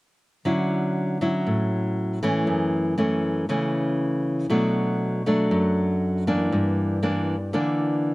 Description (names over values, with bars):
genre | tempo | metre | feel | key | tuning
bossa nova | 119 BPM | 4/4 | straight | D major | A4 = 440 Hz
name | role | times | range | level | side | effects
nylon-string guitar | accompaniment | 0.5-8.1 s | F#2 to E4 | -21 LUFS | equal | none
room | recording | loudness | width
little or no reverb | recorded outdoors, with no room sound | -21 LUFS | side -20 dB against mid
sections
0.5-8.1 A section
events
none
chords
0.5 Dmaj9; 2.5 F#m7; 4.5 Bm7; 6.5 Gm6